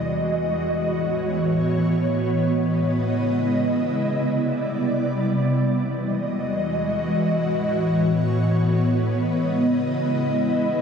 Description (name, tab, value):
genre	hip hop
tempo	free time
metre	none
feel	none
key	unclear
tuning	A4 = 440 Hz
part	ethereal airy pad	solo	0.0-10.8 s	E2 to D#5	-20 LUFS	equal	ensemble chorus, built-in reverb
room	moderate booth ambience, RT60 0.2 s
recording	none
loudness	-20 LUFS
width	side -6 dB against mid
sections	0.0-10.8 A section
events	none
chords	0.0 Emaj9; 0.7 A69; 2.3 C#m7; 4.0 Cmaj9; 5.6 Emaj9; 7.2 A69; 8.9 C#m7